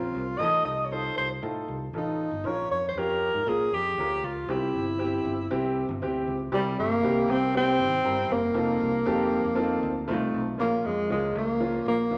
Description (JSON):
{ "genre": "uptempo 1960s-style soul", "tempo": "118 BPM", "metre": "4/4", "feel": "straight", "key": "unclear", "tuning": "A4 = 440 Hz", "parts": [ { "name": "breathy alto saxophone", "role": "melody", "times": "0.0-12.2 s", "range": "G3 to Eb5", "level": "-28 LUFS", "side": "equal", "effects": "none" }, { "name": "warm grand piano", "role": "accompaniment", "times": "0.0-12.2 s", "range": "F3 to Bb4", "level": "-33 LUFS", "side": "equal", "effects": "none" }, { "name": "fingered electric bass", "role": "bass", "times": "0.0-12.2 s", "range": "F1 to Bb2", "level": "-38 LUFS", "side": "equal", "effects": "none" } ], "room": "wet large studio reverb, RT60 1.4 s", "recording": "none", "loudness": "-27 LUFS", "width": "mono", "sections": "0.0-6.5 A section; 6.5-12.2 B section", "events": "none", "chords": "0.4 F7/A; 2.5 Bbm; 4.5 C; 8.6 F7; 10.6 Bbm" }